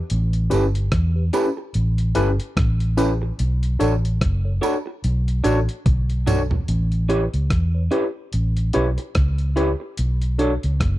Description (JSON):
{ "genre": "lovers rock reggae", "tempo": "73 BPM", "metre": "4/4", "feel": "swing 58% on 16ths", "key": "unclear", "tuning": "A4 = 443 Hz", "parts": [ { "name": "vintage muted fingered electric bass", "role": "bass", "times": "0.1-11.0 s", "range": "F#1 to E2", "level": "-20 LUFS", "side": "equal", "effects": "none" }, { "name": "dusty soul sampler-style drum kit", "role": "drums", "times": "0.1-11.0 s", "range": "hi-hat, kick drum, rim click, toms", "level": "-23 LUFS", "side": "equal", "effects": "none" }, { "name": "tine electric piano", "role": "accompaniment", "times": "0.5-10.5 s", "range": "C#4 to C#5", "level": "-24 LUFS", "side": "left 2 dB", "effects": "medium tremolo" }, { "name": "electric guitar through a small old amp", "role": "stabs", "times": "0.5-10.5 s", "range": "C#4 to C#5", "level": "-25 LUFS", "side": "right 4 dB", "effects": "none" }, { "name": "tambourine and woodblock", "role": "percussion", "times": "0.5-6.5 s", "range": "none", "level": "-35 LUFS", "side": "right 8 dB", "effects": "slapback echo" } ], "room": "little or no reverb", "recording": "dry, close 1970s-style studio recording", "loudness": "-18 LUFS", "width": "side -15 dB against mid", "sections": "0.0-6.7 A section; 6.7-11.0 B section", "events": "drum fill 5.9-6.7", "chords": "0.1 A7; 3.4 Bm7; 6.7 A9; 10.0 Bm9", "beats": "| 0.10 0.92 1.74 2.56 | 3.39 4.21 5.03 5.86 | 6.68 7.50 8.33 9.15 | 9.97 10.80" }